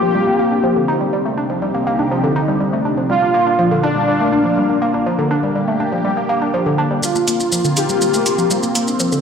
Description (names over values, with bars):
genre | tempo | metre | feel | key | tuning
melodic techno | 122 BPM | 4/4 | straight | unclear | A4 = 441 Hz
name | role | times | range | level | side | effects
analog synth brass | melody | 0.0-9.1 s | D4 to G4 | -18 LUFS | left 1 dB | chorus, ping-pong delay
lush unison pad | sustained chords | 0.0-9.2 s | Bb2 to F5 | -21 LUFS | equal | chorus, phaser
woody wave-folded pluck | arpeggios | 0.0-9.2 s | D3 to Eb4 | -18 LUFS | equal | chorus, ping-pong delay
electronic shaker and hi-hat | drums | 7.0-9.2 s | none | -21 LUFS | equal | small room ambience
room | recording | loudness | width
moderate lush hall reverb, RT60 2.4 s | played on a big sound system in a bare room, large studio reverb | -14 LUFS | side -6 dB against mid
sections
0.0-7.0 A section; 7.0-9.2 B section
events
filter sweep on synth pluck 0.0-7.0, 7.0-9.2; filter sweep on analog synth pad 0.0-7.0; build-up 7.0-9.2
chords
0.0 Fsus4; 1.1 Cmadd9; 3.1 Bb; 7.0 Fsus4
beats
0.15 0.64 | 1.13 1.62 2.11 2.60 | 3.10 3.59 4.08 4.57 | 5.06 5.56 6.05 6.54 | 7.03 7.52 8.02 8.51 | 9.00